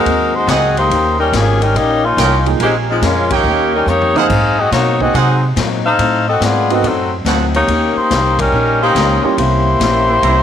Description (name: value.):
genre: jazz, big band swing.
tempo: 142 BPM.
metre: 4/4.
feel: swing 67% on 8ths.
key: Eb mixolydian.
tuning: A4 = 440 Hz.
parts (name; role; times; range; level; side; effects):
clear saxophone section; melody; 0.0-10.4 s; Eb3 to F5; -14 LUFS; left 2 dB; none.
warm grand piano; accompaniment; 0.0-9.4 s; F3 to C5; -21 LUFS; right 13 dB; none.
upright bass; bass; 0.0-10.4 s; Ab1 to C3; -18 LUFS; right 2 dB; none.
picked steel-string acoustic guitar; accompaniment; 0.1-10.4 s; Ab2 to G4; -23 LUFS; left 9 dB; none.
swinging big-band drum kit; drums; 0.1-10.4 s; crash cymbal, hi-hat, kick drum, ride cymbal, snare drum, toms; -22 LUFS; left 4 dB; none.
brilliant trumpet section; stabs; 0.5-10.4 s; Db4 to Bb5; -21 LUFS; right 12 dB; none.
room: light reverb, small room ambience.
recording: 1960s-style stereo with parts hard left and right.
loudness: -11 LUFS.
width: side -9 dB against mid.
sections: 0.0-10.4 A section.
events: band accent 3.2, 8.3; drum fill 3.9-4.3.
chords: 0.0 Ab7; 0.9 Eb7; 2.6 Bbm7; 3.5 Eb7; 4.3 Ab7; 6.0 Adim7; 7.7 Eb7; 9.4 C7b9.